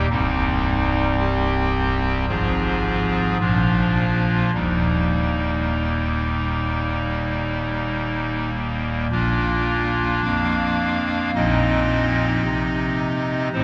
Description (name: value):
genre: classical, chorale-style piece for pipe organ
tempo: 54 BPM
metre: 4/4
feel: straight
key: Eb major, Bb major from 9.1 s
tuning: A4 = 440 Hz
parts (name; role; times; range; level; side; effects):
- pipe organ, clarinet reed; solo; 0.0-13.6 s; C1 to F5; -21 LUFS; equal; none
room: wet cathedral reverb, RT60 4.5 s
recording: heard from further back in the room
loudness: -21 LUFS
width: mono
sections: 0.0-9.1 A section; 9.1-13.6 B section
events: none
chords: 0.1 Cm; 2.3 Fm/Ab; 3.4 Bb; 4.5 Eb; 9.1 Bb; 11.3 Cm7/Bb